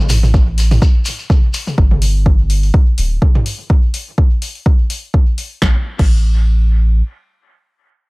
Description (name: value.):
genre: dub techno.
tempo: 125 BPM.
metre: 4/4.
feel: swing 56% on 16ths.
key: unclear.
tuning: A4 = 444 Hz.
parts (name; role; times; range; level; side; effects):
soft dub sub bass; bass; 0.0-7.0 s; D1 to A1; -13 LUFS; equal; sidechain pumping.
shekere; percussion; 0.0-1.8 s; none; -25 LUFS; left 2 dB; none.
punchy analog drum machine; drums; 0.1-6.1 s; crash cymbal, hi-hat, snare drum; -24 LUFS; left 2 dB; dub echo.
electronic toms; percussion; 0.1-3.4 s; none; -21 LUFS; right 1 dB; sidechain pumping on toms.
electronic kick drum; drums; 0.3-6.1 s; none; -12 LUFS; equal; overdrive.
room: little or no reverb.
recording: none.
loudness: -12 LUFS.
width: side -26 dB against mid.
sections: 0.0-5.6 A section; 5.6-8.1 B section.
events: none.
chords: none.